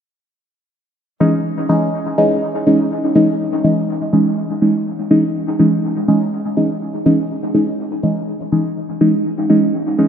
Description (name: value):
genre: techno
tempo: 123 BPM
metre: 4/4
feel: swing 54% on 16ths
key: C# minor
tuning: A4 = 442 Hz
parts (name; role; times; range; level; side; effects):
- deep mellow chord stab; stabs; 1.2-10.1 s; E3 to D#4; -14 LUFS; equal; chorus, phaser, dub echo
room: wet lush hall reverb, RT60 3.0 s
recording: none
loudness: -14 LUFS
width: side -8 dB against mid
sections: 1.0-10.1 A section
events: filter sweep on synth stab 1.0-10.1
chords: 1.0 C#madd9